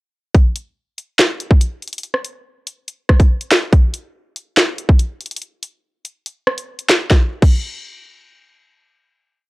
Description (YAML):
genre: hip hop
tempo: 142 BPM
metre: 4/4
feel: half-time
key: none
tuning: none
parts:
  - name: drill drum kit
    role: drums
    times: 0.3-7.5 s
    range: crash cymbal, handclaps, hi-hat, kick drum, rim click, snare drum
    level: -13 LUFS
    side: equal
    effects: none
room: little or no reverb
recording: dry, gritty hardware recording, cassette tape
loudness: -14 LUFS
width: side -22 dB against mid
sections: 0.3-7.1 hook; 7.1-8.8 final hit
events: kick muted 6.3-7.1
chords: none